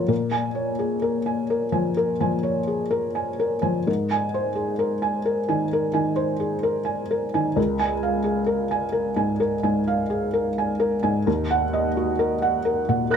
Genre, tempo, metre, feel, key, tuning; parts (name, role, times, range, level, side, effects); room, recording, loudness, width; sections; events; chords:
neoclassical minimalist piano; 64 BPM; 4/4; rubato; A4 = 440 Hz
felt-muted upright piano; solo; 0.0-13.2 s; Db2 to Gb6; -21 LUFS; equal
light reverb; close, detailed microphones; -21 LUFS; side -7 dB against mid
0.1-13.2 A section
0.1 Bbm7; 3.9 Abadd9; 7.6 Db6; 11.3 Ebm